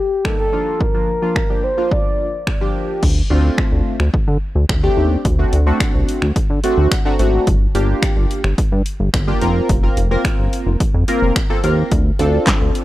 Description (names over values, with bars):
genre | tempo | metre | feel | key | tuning
dance-pop | 108 BPM | 4/4 | straight | unclear | A4 = 439 Hz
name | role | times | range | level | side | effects
mellow horn-like synth lead | melody | 0.0-2.7 s | G4 to D5 | -20 LUFS | left 1 dB | chorus
warm analog keys | accompaniment | 0.2-12.8 s | F3 to Bb5 | -20 LUFS | equal | chorus, phaser, sidechain pumping
house drum kit | drums | 0.2-12.8 s | crash cymbal, finger snaps, handclaps, hi-hat, kick drum, snare drum | -18 LUFS | equal | none
chorused synth bass | bass | 3.0-12.7 s | F1 to D3 | -16 LUFS | equal | sidechain pumping
room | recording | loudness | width
little or no reverb | dry, gritty hardware recording | -14 LUFS | side -16 dB against mid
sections
0.0-3.0 A section; 3.0-12.8 B section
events
synth keys fill 6.6-7.5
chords
0.0 Eb; 0.5 Bb; 3.0 Dm7; 5.2 D7; 7.5 Gm7; 9.4 Fsus4; 11.9 Dm7